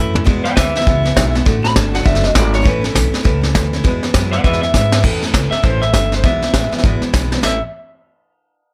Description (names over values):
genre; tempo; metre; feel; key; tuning
rockabilly; 201 BPM; 4/4; swing 61% on 8ths; A major; A4 = 441 Hz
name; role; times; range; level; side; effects
electric guitar through a small old amp; melody; 0.0-7.6 s; E4 to B5; -22 LUFS; equal; analog delay
picked steel-string acoustic guitar; accompaniment; 0.0-7.6 s; E2 to F#4; -24 LUFS; equal; none
upright bass; bass; 0.0-7.6 s; F#1 to G#2; -21 LUFS; equal; none
vintage brush drum kit; drums; 0.2-7.5 s; crash cymbal, hi-hat, kick drum, snare drum, toms; -18 LUFS; equal; none
room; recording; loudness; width
little or no reverb; none; -15 LUFS; mono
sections
0.0-5.0 A section; 5.0-7.4 B section; 7.4-8.6 C section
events
drum fill 0.0, 4.7, 7.3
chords
0.3 E; 1.5 D; 2.7 A; 3.8 E; 5.0 A; 6.2 E; 7.4 A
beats
| 0.27 0.57 0.87 1.16 | 1.46 1.76 2.06 2.36 | 2.65 2.95 3.25 3.55 | 3.85 4.14 4.44 4.74 | 5.04 5.34 5.63 5.93 | 6.23 6.53 6.83 7.13 | 7.43